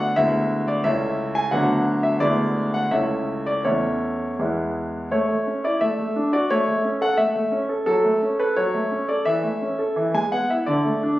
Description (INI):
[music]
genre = classical-period piano sonatina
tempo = 86 BPM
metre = 2/4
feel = rubato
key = A major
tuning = A4 = 437 Hz
[part]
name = clear concert grand piano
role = solo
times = 0.0-11.2 s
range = C#2 to G#5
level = -20 LUFS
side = equal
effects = none
[sound]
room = moderate studio reverb, RT60 0.8 s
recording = recorded on a phone in the room, club reverb, compression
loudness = -20 LUFS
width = side -16 dB against mid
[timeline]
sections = 0.0-5.1 A section; 5.1-11.2 B section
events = none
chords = 0.2 E7/D; 0.8 A/C#; 1.5 Bm/D; 2.2 E7/D; 2.9 A/C#; 3.7 A/E; 4.4 E; 5.1 A; 5.8 D/A; 6.5 A; 7.9 F#m; 9.3 A/E; 10.0 E; 10.7 D5